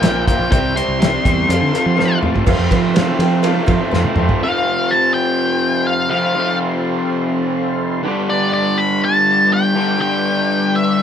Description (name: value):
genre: classic rock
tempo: 123 BPM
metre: 4/4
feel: straight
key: unclear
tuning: A4 = 441 Hz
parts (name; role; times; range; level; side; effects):
- octave-fuzz lead guitar; melody; 0.0-11.0 s; D5 to C6; -17 LUFS; left 2 dB; distortion
- warm upright piano; accompaniment; 0.0-4.4 s; F4 to G5; -24 LUFS; left 3 dB; none
- tonewheel organ; sustained chords; 0.0-11.0 s; B3 to E5; -28 LUFS; equal; none
- raw garage guitar; riff; 0.0-11.0 s; F2 to C4; -18 LUFS; left 1 dB; overdrive
- fingered electric bass; bass; 0.0-4.3 s; Bb1 to F3; -19 LUFS; right 3 dB; none
- cloth-damped thuddy drum kit; drums; 0.0-4.4 s; crash cymbal, hi-hat, kick drum, ride cymbal, snare drum, toms; -18 LUFS; equal; none
- cowbell; percussion; 2.5-4.0 s; none; -27 LUFS; right 5 dB; none
room: light reverb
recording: band playing live in one room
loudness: -14 LUFS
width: side -8 dB against mid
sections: 0.0-2.5 A section; 2.5-4.4 B section; 4.4-11.0 C section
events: lead electric guitar solo 0.0-2.5; drum fill 2.0-2.5, 3.9-4.4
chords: 0.0 Bb; 0.5 C; 1.5 F; 8.1 G